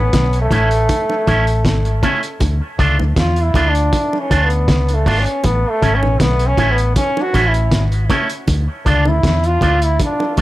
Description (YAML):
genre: roots reggae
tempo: 79 BPM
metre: 4/4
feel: straight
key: A major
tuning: A4 = 440 Hz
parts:
  - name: bright trombone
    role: melody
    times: 0.0-10.4 s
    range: A3 to F#4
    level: -19 LUFS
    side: equal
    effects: dub echo, plate reverb
  - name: clean electric guitar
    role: arpeggios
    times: 0.0-9.8 s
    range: A2 to F3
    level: -27 LUFS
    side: left 7 dB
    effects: none
  - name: vintage muted fingered electric bass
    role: bass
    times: 0.0-10.4 s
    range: G#1 to E2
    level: -16 LUFS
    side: equal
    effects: none
  - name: cloth-damped thuddy drum kit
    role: drums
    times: 0.1-10.4 s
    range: hi-hat, kick drum, snare drum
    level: -18 LUFS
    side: equal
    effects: none
  - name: electric guitar with an envelope filter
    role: accompaniment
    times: 0.5-10.4 s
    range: A3 to F4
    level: -21 LUFS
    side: right 2 dB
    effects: dub echo
  - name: bongos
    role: percussion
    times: 0.5-10.4 s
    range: none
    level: -26 LUFS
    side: right 4 dB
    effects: none
room: light reverb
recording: none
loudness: -13 LUFS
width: side -16 dB against mid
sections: 0.0-10.4 A section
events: trombone solo 0.0-10.4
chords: 0.0 A; 2.4 Dm; 5.4 A; 8.5 Dm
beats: 0.14 0.90 1.65 | 2.41 3.17 3.93 4.69 | 5.45 6.20 6.96 7.72 | 8.48 9.24 10.00